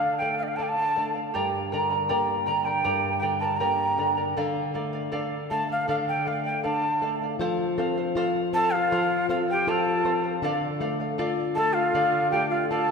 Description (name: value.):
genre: andean folk, Andean ensemble.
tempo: 79 BPM.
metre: 2/4.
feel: straight.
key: D minor.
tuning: A4 = 442 Hz.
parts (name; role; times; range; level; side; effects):
breathy mellow quena; melody; 0.0-12.9 s; D5 to Bb5; -26 LUFS; equal; none.
charango; accompaniment; 0.0-12.9 s; G4 to Bb5; -29 LUFS; right 2 dB; none.
flamenco guitar; accompaniment; 0.0-12.9 s; G2 to F4; -29 LUFS; left 2 dB; none.
breathy bright large quena; second line; 8.5-12.9 s; F4 to A4; -29 LUFS; left 1 dB; none.
room: wet church reverb, RT60 2.8 s.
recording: recorded in a church or concert hall.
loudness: -23 LUFS.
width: side -5 dB against mid.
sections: 0.0-7.4 A section; 7.4-12.9 A section.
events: none.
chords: 0.0 Dm; 1.4 Gm; 4.4 Dm; 7.4 F; 10.4 Dm.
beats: 0.59 | 1.35 2.11 | 2.86 3.62 | 4.37 5.13 | 5.89 6.64 | 7.40 8.16 | 8.92 9.67 | 10.43 11.19 | 11.95 12.70.